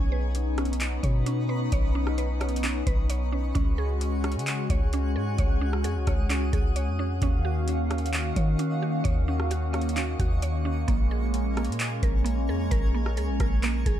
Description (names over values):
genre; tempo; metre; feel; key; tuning
hip hop, atmospheric cloud-rap; 131 BPM; 4/4; half-time; B lydian; A4 = 439 Hz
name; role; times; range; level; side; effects
hollow soft pad; sustained chords; 0.0-14.0 s; D#3 to E#5; -31 LUFS; left 2 dB; chorus, sidechain pumping
mallet-like synth pluck; arpeggios; 0.0-14.0 s; A#3 to C#5; -35 LUFS; right 6 dB; chorus, low-pass filter, ping-pong delay
soft 808-style bass; bass; 0.0-14.0 s; A#1 to D#3; -27 LUFS; equal; none
twinkling granular texture; texture; 0.0-14.0 s; F#4 to D#6; -39 LUFS; left 1 dB; built-in reverb
booming analog drum machine; drums; 0.3-14.0 s; handclaps, hi-hat, kick drum, rim click; -27 LUFS; equal; none
room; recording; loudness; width
little or no reverb; none; -24 LUFS; side -11 dB against mid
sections
0.0-14.0 A section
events
none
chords
0.0 Badd9; 3.6 C#sus4; 7.2 D#m7; 10.9 A#m7